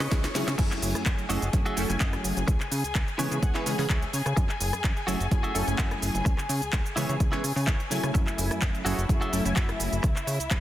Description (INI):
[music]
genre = filtered disco house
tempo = 127 BPM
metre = 4/4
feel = straight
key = F# minor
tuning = A4 = 440 Hz
[part]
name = muted studio string section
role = sustained chords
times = 0.0-10.6 s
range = E4 to C#6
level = -36 LUFS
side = left 3 dB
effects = vintage 12-bit sampler grit, sidechain pumping
[part]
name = direct-recorded clean electric guitar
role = riff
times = 0.0-10.3 s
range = E4 to G#5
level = -36 LUFS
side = equal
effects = spring reverb, sidechain pumping
[part]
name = plucky analog bass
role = bass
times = 0.0-10.6 s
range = F#1 to C#3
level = -31 LUFS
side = equal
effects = sidechain pumping
[part]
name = house drum kit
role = drums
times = 0.0-10.6 s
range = crash cymbal, handclaps, hi-hat, rim click, shaker, snare drum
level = -32 LUFS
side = equal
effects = soft clipping on snare, sidechain pumping on hats, sidechain pumping on perc, sidechain pumping on cymbals
[part]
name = funky polysynth comp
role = accompaniment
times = 0.1-10.0 s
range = E3 to G#5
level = -32 LUFS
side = equal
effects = chorus, phaser, sidechain pumping
[part]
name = electronic kick drum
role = drums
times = 0.1-10.6 s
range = none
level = -26 LUFS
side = equal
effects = overdrive
[sound]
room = light reverb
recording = dense, heavily limited modern master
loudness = -24 LUFS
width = side -13 dB against mid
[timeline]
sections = 0.6-10.6 A section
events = drum fill 0.0-0.6; drop 0.6-10.6; clean electric guitar fill 3.0-4.4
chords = 0.0 C#m7; 0.6 F#m9; 2.5 C#m7; 4.4 F#m9; 6.3 C#m7; 8.1 F#m9; 10.0 C#m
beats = 0.12 | 0.59 1.06 1.53 2.01 | 2.48 2.95 3.42 3.90 | 4.37 4.84 5.31 5.79 | 6.26 6.73 7.20 7.68 | 8.15 8.62 9.09 9.57 | 10.04 10.51